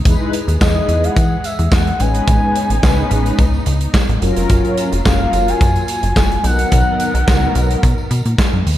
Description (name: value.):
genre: early-eighties boogie funk.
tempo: 108 BPM.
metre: 4/4.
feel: straight.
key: F# major.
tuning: A4 = 440 Hz.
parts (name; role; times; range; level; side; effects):
mellow synth brass; accompaniment; 0.0-7.9 s; F#3 to B4; -21 LUFS; left 1 dB; chorus, slapback echo.
muted studio string section; sustained chords; 0.0-8.8 s; C#3 to A#4; -26 LUFS; equal; none.
plucky analog bass; bass; 0.0-8.8 s; E#1 to E3; -16 LUFS; equal; none.
modern studio drum kit; drums; 0.1-8.8 s; handclaps, hi-hat, kick drum, snare drum; -16 LUFS; equal; none.
tambourine; percussion; 0.1-8.8 s; none; -35 LUFS; right 3 dB; none.
expressive portamento lead; melody; 0.6-8.4 s; D#5 to G#5; -20 LUFS; left 1 dB; chorus, slapback echo.
room: moderate lush hall reverb, RT60 1.6 s, studio ambience.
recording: big arena sound.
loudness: -13 LUFS.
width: side -13 dB against mid.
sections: 0.0-8.8 A section.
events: none.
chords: 0.1 Emaj7; 2.0 Amaj9#11; 4.2 F#maj7; 6.4 Bmaj7.